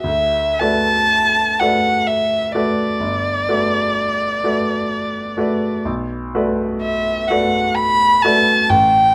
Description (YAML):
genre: classical, impressionist duo for violin and grand piano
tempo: 63 BPM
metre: 3/4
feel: rubato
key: D major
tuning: A4 = 439 Hz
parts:
  - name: rich violin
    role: melody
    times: 0.0-9.1 s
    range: D5 to B5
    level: -18 LUFS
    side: equal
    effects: none
  - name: clear grand piano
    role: accompaniment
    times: 0.0-9.1 s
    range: G1 to D5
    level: -22 LUFS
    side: equal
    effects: none
room: moderate stone room reverb, RT60 1.2 s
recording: none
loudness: -17 LUFS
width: mono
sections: 0.0-9.1 A section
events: none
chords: 0.0 D6; 3.0 Gmaj9; 5.8 Bm7